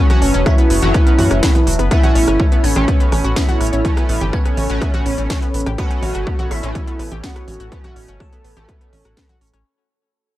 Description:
melodic techno; 124 BPM; 4/4; straight; A4 = 440 Hz
wide unison lead; melody; 0.0-9.6 s; C#4 to A4; -21 LUFS; equal; sidechain pumping, tape echo
glassy wavetable pluck; second line; 0.0-9.6 s; C#5 to A5; -32 LUFS; left 1 dB; chorus, sidechain pumping, tape echo
dark analog pad; sustained chords; 0.0-9.6 s; F#4 to B5; -30 LUFS; equal; chorus, sidechain pumping
analog pluck; arpeggios; 0.0-9.6 s; F#3 to G4; -26 LUFS; left 1 dB; chorus, cassette tape, sidechain pumping, tape echo
sync-sweep polysynth; stabs; 0.0-9.3 s; A2 to C#4; -26 LUFS; right 2 dB; analog chorus, sidechain pumping, tape echo
techno drum kit; drums; 0.1-9.6 s; congas, hi-hat, rim click, snare drum; -24 LUFS; right 1 dB; overdrive, studio ambience
round analog bass; bass; 0.2-9.6 s; E1 to F#2; -19 LUFS; equal; sidechain pumping
electronic kick drum; drums; 0.5-9.3 s; -16 LUFS; equal; overdrive, studio ambience
little or no reverb; dry, gritty hardware recording; -13 LUFS; side -15 dB against mid
0.0-9.7 A section
drop 0.0-9.7; fade-out 1.9-9.7
0.0 F#m; 1.9 Aadd9

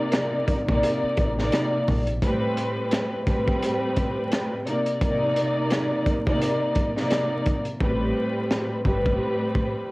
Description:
hip hop, boom-bap hip-hop; 86 BPM; 4/4; swing 58% on 16ths; A4 = 440 Hz
warm studio string section; accompaniment; 0.0-9.9 s; A2 to D5; -24 LUFS; equal; cassette tape, high-pass filter, low-pass filter
crunchy breakbeat drum kit; drums; 0.1-9.7 s; hi-hat, kick drum, rim click, snare drum; -26 LUFS; equal; cassette tape
deep dub fingered electric bass; bass; 0.7-2.2, 7.8-9.2 s; G1 to Bb1; -27 LUFS; equal
little or no reverb; home recording on cassette, vinyl crackle; -22 LUFS; side -22 dB against mid
0.0-7.8 A section; 7.8-9.9 B section
hi-hats muted 7.8-9.9
0.0 Cm9; 2.2 Am9; 4.7 Cm9; 7.8 Am9

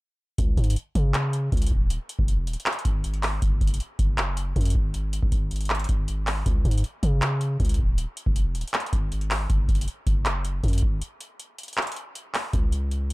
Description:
hip hop, trap; 158 BPM; 4/4; half-time; Db major; A4 = 435 Hz
long sustained 808-style bass; bass; 0.4-13.1 s; Eb1 to Db3; -26 LUFS; equal
booming analog drum machine; drums; 0.4-13.1 s; handclaps, hi-hat, kick drum; -24 LUFS; equal
little or no reverb; dark, warm production; -22 LUFS; side -21 dB against mid
0.4-12.5 A section
break 11.0-12.5

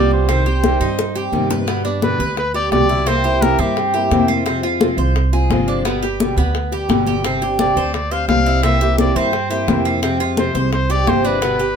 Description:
latin, Cuban son and guajira; 172 BPM; 4/4; straight; A4 = 440 Hz
clear trumpet; melody; 0.0-4.3, 7.6-11.8 s; G4 to F5; -21 LUFS; left 2 dB
fingerpicked steel-string acoustic guitar; accompaniment; 0.0-11.8 s; B2 to G4; -22 LUFS; left 3 dB
Cuban tres; arpeggios; 0.0-11.8 s; G3 to C5; -21 LUFS; right 4 dB
upright bass; bass; 0.0-11.8 s; G1 to G2; -20 LUFS; right 2 dB
congas; percussion; 0.1-11.8 s; -22 LUFS; left 6 dB
bongos; percussion; 0.3-11.8 s; -24 LUFS; left 4 dB
light reverb; minimal, uncompressed stereo recording; -15 LUFS; side -7 dB against mid
0.0-1.7 A section; 1.7-11.8 B section
drum fill 1.0-1.7
0.3 Cm; 1.7 G; 3.1 C7; 4.5 Fm; 5.9 G; 7.2 Gsus4; 8.6 C7; 10.0 Fmadd9

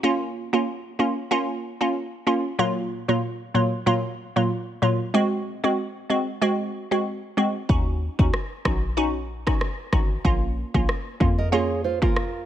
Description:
dancehall; 94 BPM; 4/4; swing 56% on 16ths; A4 = 440 Hz
glassy wavetable pluck; accompaniment; 0.0-12.2 s; Bb2 to Gb4; -23 LUFS; right 1 dB; chorus, sidechain pumping
short 808-style bass; bass; 7.7-12.4 s; Ab1 to F2; -25 LUFS; left 1 dB
afro-pop drum kit; drums; 7.7-12.3 s; kick drum, rim click; -23 LUFS; equal
nylon-string guitar; arpeggios; 11.4-12.5 s; F4 to Eb5; -25 LUFS; right 5 dB
little or no reverb; -22 LUFS; side -11 dB against mid
0.0-12.5 A section
0.0 Bbm; 2.6 Gbmaj7/Bb; 5.1 Ab7; 7.7 Ebm7; 10.2 Bbm

